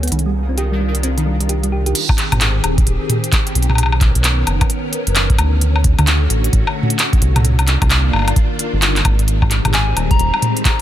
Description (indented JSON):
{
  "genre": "IDM",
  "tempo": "131 BPM",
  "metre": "4/4",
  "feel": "swing 62% on 16ths",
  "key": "Ab lydian",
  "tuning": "A4 = 440 Hz",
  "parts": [
    { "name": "soft string machine", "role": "sustained chords", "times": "0.0-10.8 s", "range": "D3 to Bb4", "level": "-23 LUFS", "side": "left 1 dB", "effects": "phaser, ensemble chorus, vintage 12-bit sampler grit" },
    { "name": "thumb-piano-like synth pluck", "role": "arpeggios", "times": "0.0-1.9 s", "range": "Eb3 to G4", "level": "-24 LUFS", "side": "right 1 dB", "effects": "chorus, cassette tape, dub echo" },
    { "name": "round analog bass", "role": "bass", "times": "0.0-10.3 s", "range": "Eb1 to D2", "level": "-16 LUFS", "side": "equal", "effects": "none" },
    { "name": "organic electronic drum kit", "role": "drums", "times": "0.0-10.8 s", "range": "crash cymbal, handclaps, hi-hat, toms, woodblock", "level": "-18 LUFS", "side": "equal", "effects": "none" },
    { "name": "pulsing gated texture", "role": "texture", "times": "0.0-2.0 s", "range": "Eb3 to Eb6", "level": "-36 LUFS", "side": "right 1 dB", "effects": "chorus, built-in reverb, sidechain pumping" },
    { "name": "electronic kick drum", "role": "drums", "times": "2.1-10.8 s", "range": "none", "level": "-15 LUFS", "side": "equal", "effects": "none" },
    { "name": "soft struck synth lead", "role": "melody", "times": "9.7-10.8 s", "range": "Ab5 to Bb5", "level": "-20 LUFS", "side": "left 4 dB", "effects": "chorus" }
  ],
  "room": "little or no reverb",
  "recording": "none",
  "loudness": "-13 LUFS",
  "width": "side -12 dB against mid",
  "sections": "0.0-2.0 A section; 2.0-10.8 B section",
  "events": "filter sweep on synth arpeggio sound 0.0-2.0",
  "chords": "0.1 Cm11; 2.0 Abmaj7; 3.8 Bmaj9; 5.6 Dmaj7; 7.4 Cm11; 9.3 Abmaj7"
}